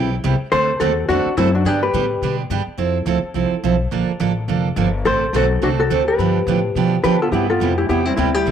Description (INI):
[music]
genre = country, western swing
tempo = 211 BPM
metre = 4/4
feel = swing 59% on 8ths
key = C major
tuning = A4 = 442 Hz
[part]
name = hollow-body jazz guitar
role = melody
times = 0.0-2.4, 5.1-8.5 s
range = C4 to C5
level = -18 LUFS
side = left 3 dB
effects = none
[part]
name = picked steel-string acoustic guitar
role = accompaniment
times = 0.0-8.5 s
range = C3 to A4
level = -20 LUFS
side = right 7 dB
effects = none
[part]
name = upright bass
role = bass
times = 0.0-8.5 s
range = F1 to D3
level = -22 LUFS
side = left 2 dB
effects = none
[part]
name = breathy clarinet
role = second line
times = 7.0-8.5 s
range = G3 to D4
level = -23 LUFS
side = right 8 dB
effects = none
[sound]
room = moderate spring reverb, RT60 1.1 s, small room reverb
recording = 1960s-style stereo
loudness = -16 LUFS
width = side -8 dB against mid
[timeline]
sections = 0.0-7.3 A section; 7.3-8.5 B section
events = none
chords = 0.0 Cmaj7; 0.5 D7; 1.6 G; 2.8 Fmaj7; 3.9 Bbmaj7; 5.0 D7/A; 6.2 G7; 7.3 Cmaj7